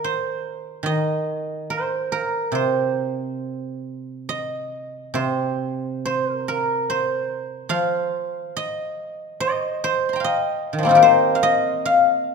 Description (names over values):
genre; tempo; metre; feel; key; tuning
chinese traditional, Chinese solo plucked strings; 71 BPM; 4/4; uneven beats, rubato; unclear; A4 = 440 Hz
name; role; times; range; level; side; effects
guzheng; solo; 0.0-12.3 s; C3 to C6; -20 LUFS; left 1 dB; none
room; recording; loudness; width
moderate concert hall reverb, RT60 1.9 s; minimal, uncompressed stereo recording; -19 LUFS; side -5 dB against mid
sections
0.0-12.3 A section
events
none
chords
none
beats
0.04 | 0.86 1.68 2.54 3.41 | 4.28 5.16 6.04 6.88 | 7.71 8.55 9.38 10.19 | 11.01 11.82